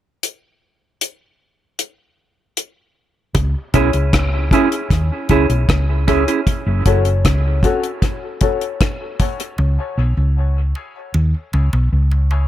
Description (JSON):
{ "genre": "dub reggae", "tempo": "77 BPM", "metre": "4/4", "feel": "straight", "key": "C# minor", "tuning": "A4 = 439 Hz", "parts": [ { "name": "deep reggae drum kit", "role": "drums", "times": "0.2-9.6 s", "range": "hi-hat, kick drum, rim click", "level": "-18 LUFS", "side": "equal", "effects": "none" }, { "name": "bongos", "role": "percussion", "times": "3.3-3.5, 9.6-12.5 s", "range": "none", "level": "-34 LUFS", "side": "right 3 dB", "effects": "high-pass filter on perc, dub echo" }, { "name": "hollow-body short-scale fingered electric bass", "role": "bass", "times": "3.4-12.5 s", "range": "F#1 to D#2", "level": "-16 LUFS", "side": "equal", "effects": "none" }, { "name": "mellow electric guitar", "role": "accompaniment", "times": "3.7-6.4 s", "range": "C#4 to G#4", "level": "-21 LUFS", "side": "right 9 dB", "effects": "dub echo" }, { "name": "dark upright piano", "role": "stabs", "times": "3.7-12.5 s", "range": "C#4 to C#5", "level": "-23 LUFS", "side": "left 6 dB", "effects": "high-pass filter, dub echo" } ], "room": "light reverb, small room reverb", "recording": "none", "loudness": "-15 LUFS", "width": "side -13 dB against mid", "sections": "0.2-3.3 A section; 3.3-9.6 B section; 9.6-12.5 C section", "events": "part muted 3.3-9.6; filter sweep 6.5-12.5", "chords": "0.2 N.C.; 3.3 C#m; 6.5 F#m; 9.6 C#m", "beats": "| 0.23 1.01 1.79 2.57 | 3.35 4.13 4.91 5.69 | 6.46 7.24 8.02 8.80 | 9.58 10.36 11.14 11.92" }